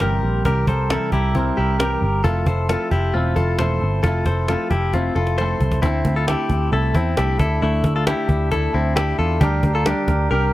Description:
jangly indie pop; 134 BPM; 4/4; straight; A4 = 440 Hz
electric guitar with an envelope filter; accompaniment; 0.0-10.5 s; C3 to Bb4; -25 LUFS; right 4 dB
direct-recorded clean electric guitar; arpeggios; 0.0-10.5 s; A3 to C5; -22 LUFS; left 4 dB; spring reverb, slapback echo
vintage muted picked electric bass; bass; 0.0-10.5 s; E1 to E2; -20 LUFS; equal
cajon; drums; 0.0-10.4 s; -22 LUFS; equal
little or no reverb; dry, close 1970s-style studio recording; -17 LUFS; side -16 dB against mid
0.0-5.8 A section; 5.8-10.5 B section
drum fill 4.9-5.8
0.0 C7; 2.2 Fmaj7; 5.8 Am/D; 7.4 Dsus2; 9.4 Gm/D

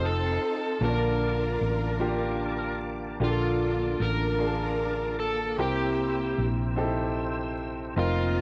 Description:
slow gospel; 50 BPM (dotted quarters); 6/8; straight; Bb major; A4 = 441 Hz
overdriven slide guitar; melody; 0.0-8.4 s; F4 to Bb4; -33 LUFS; equal
warm studio string section; melody; 0.0-8.4 s; Bb3 to Bb4; -37 LUFS; equal
clear baby grand piano; accompaniment; 0.0-8.4 s; C3 to A5; -33 LUFS; equal
tonewheel organ; sustained chords; 0.0-8.4 s; Bb3 to E6; -42 LUFS; equal; slow rotary speaker, chorus vibrato
hollow-body short-scale fingered electric bass; bass; 0.0-8.4 s; F1 to C2; -32 LUFS; equal
little or no reverb; dry, close 1970s-style studio recording; -28 LUFS; mono
0.0-3.2 A section; 3.2-8.4 A section
0.0 F7; 0.8 Bbmaj7; 5.6 C7

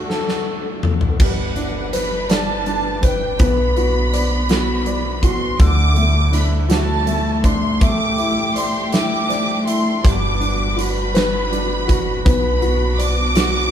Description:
six-eight pop ballad; 54 BPM (dotted quarters); 6/8; straight; G major; A4 = 440 Hz
warm baby grand piano; accompaniment; 0.0-13.7 s; D3 to D5; -23 LUFS; left 1 dB
warm symphonic string section; sustained chords; 0.0-13.7 s; D3 to B4; -25 LUFS; left 1 dB
upright bass; bass; 0.0-13.7 s; G1 to D2; -21 LUFS; equal
huge arena drum kit; drums; 0.1-13.5 s; crash cymbal, hi-hat, kick drum, snare drum, toms; -20 LUFS; equal
warm studio violin section; second line; 1.2-13.7 s; F#5 to D6; -23 LUFS; right 2 dB
wet studio reverb, RT60 0.6 s; band playing live in one room; -15 LUFS; side -9 dB against mid
0.0-1.2 A section; 1.2-13.7 B section
drum fill 0.1-1.2
0.0 D; 1.2 Gmaj7; 3.4 Bm; 5.6 Dadd9; 7.8 A7sus4; 10.0 Gmaj7; 12.3 Bm

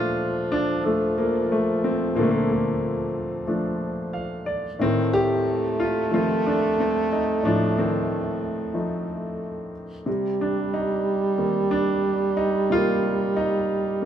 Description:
acoustic folk-pop ballad; 91 BPM; 4/4; straight; Bb major; A4 = 440 Hz
warm grand piano; melody; 0.0-14.1 s; A2 to F5; -23 LUFS; left 1 dB
warm French horn; second line; 0.0-14.1 s; F3 to A3; -25 LUFS; right 2 dB
wet studio reverb, RT60 0.6 s; band playing live in one room; -21 LUFS; side -9 dB against mid
0.0-14.1 A section
grand piano fill 3.8-4.8
0.0 Bbmaj7; 4.8 F7/A; 10.1 Cm7

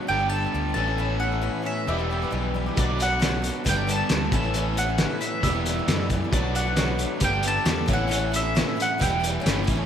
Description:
folk rock and heartland rock; 135 BPM; 4/4; straight; A4 = 441 Hz
mandolin; melody; 0.0-9.6 s; D5 to A5; -28 LUFS; right 1 dB; tape echo
picked swing-style acoustic guitar; accompaniment; 0.0-9.9 s; E2 to A4; -33 LUFS; left 6 dB; slapback echo
crunchy overdriven guitar; riff; 0.0-9.9 s; E2 to A4; -28 LUFS; equal; spring reverb, slapback echo
fingered electric bass; bass; 0.1-9.9 s; E1 to F#2; -28 LUFS; equal
warm upright piano; accompaniment; 2.7-9.9 s; C#4 to E5; -37 LUFS; right 2 dB; slapback echo
cloth-damped thuddy drum kit; drums; 2.8-9.8 s; hi-hat, kick drum, snare drum; -26 LUFS; equal
moderate concert hall reverb, RT60 2.0 s, small room ambience; big arena sound; -22 LUFS; side -8 dB against mid
0.0-9.9 A section
0.1 Gadd9; 0.8 Aadd9; 1.9 Em; 2.8 Bm7; 3.7 Gadd9; 4.3 Aadd9; 5.4 Em; 6.3 Bm7; 7.2 Gadd9; 7.9 Aadd9; 9.0 Em

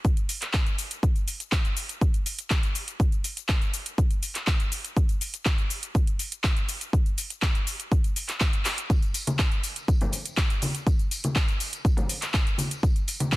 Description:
house; 122 BPM; 4/4; straight
electronic kick drum; drums; 0.0-13.4 s; -23 LUFS; equal
house drum kit; drums; 0.0-13.4 s; handclaps, hi-hat, shaker; -29 LUFS; equal; sidechain pumping on hats, sidechain pumping on perc
tambourine and congas; percussion; 8.9-13.4 s; -32 LUFS; left 1 dB; sidechain pumping on perc
digital ambience; dense, heavily limited modern master; -24 LUFS; side -18 dB against mid
0.0-13.4 A section
drum fill 8.7

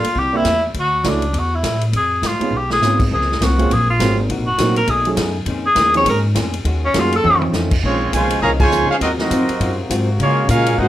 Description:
jazz, big band swing; 203 BPM; 4/4; swing 60% on 8ths; Db major, Bb minor from 7.8 s; A4 = 440 Hz
breathy tenor saxophone; melody; 0.0-7.4 s; Db4 to Db5; -17 LUFS; left 1 dB
warm grand piano; accompaniment; 0.0-7.7 s; F3 to Ab4; -22 LUFS; right 3 dB
upright bass; bass; 0.0-10.9 s; Gb1 to Db3; -20 LUFS; equal
swinging big-band drum kit; drums; 0.0-10.9 s; crash cymbal, hi-hat, kick drum, ride cymbal, snare drum, toms; -23 LUFS; equal
hollow-body jazz guitar; accompaniment; 3.1-10.9 s; F2 to Ab4; -25 LUFS; left 3 dB
warm trumpet section; melody; 7.8-10.9 s; Ab3 to Bb5; -18 LUFS; right 1 dB
muted trombone section; second line; 7.8-10.9 s; Db3 to Gb4; -22 LUFS; right 2 dB
dark trombone section; sustained chords; 7.8-10.9 s; C3 to Gb4; -28 LUFS; left 1 dB
moderate large studio reverb, RT60 0.8 s; -14 LUFS; side -13 dB against mid
0.0-7.8 A section; 7.8-10.9 B section
tenor saxophone solo 0.0-7.8; drum fill 2.5, 7.2; band accent 8.6
0.2 C9; 0.7 Dmaj9; 1.9 Db7; 3.1 Gbmaj9#11; 4.3 Cm7b5; 4.9 Cb13; 5.5 Bbm11; 6.7 Ebm11; 7.2 F7b13; 7.8 Bbm11; 9.0 Ab13; 10.2 Db6

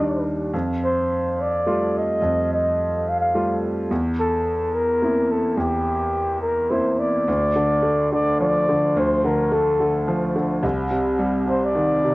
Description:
acoustic folk-pop ballad; 107 BPM; 3/4; straight; A4 = 441 Hz
breathy flugelhorn; melody; 0.0-12.1 s; G4 to F5; -21 LUFS; equal; cassette tape
clear grand piano; accompaniment; 0.0-12.1 s; C2 to F4; -22 LUFS; equal; cassette tape
light reverb, small room ambience; home recording on cassette; -19 LUFS; side -21 dB against mid
0.0-7.3 A section; 7.3-12.1 B section
0.0 Ebmaj7; 0.5 Fadd9; 3.9 C7/E; 7.3 Dm; 10.6 Cmadd9

